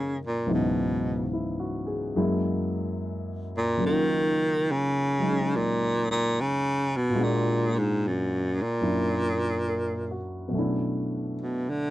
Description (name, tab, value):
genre	jazz ballad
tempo	72 BPM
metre	4/4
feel	swing 66% on 8ths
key	unclear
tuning	A4 = 440 Hz
part	bright baritone saxophone	melody	0.0-11.9 s	Gb2 to Eb3	-25 LUFS	equal	none
part	warm grand piano	accompaniment	0.0-11.9 s	Db2 to Bb4	-28 LUFS	equal	none
room	light reverb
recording	dry, close 1970s-style studio recording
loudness	-24 LUFS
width	side -15 dB against mid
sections	0.0-10.5 A section; 10.5-11.9 B section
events	baritone saxophone solo 10.5-11.9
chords	0.5 Dbm11; 2.2 Gb7; 3.8 Gbmaj13; 7.2 Bb7b13; 8.8 Gb7b13; 10.5 Bm11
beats	| 0.48 1.32 2.15 2.99 | 3.82 4.65 5.49 6.32 | 7.16 7.99 8.83 9.69 | 10.54 11.38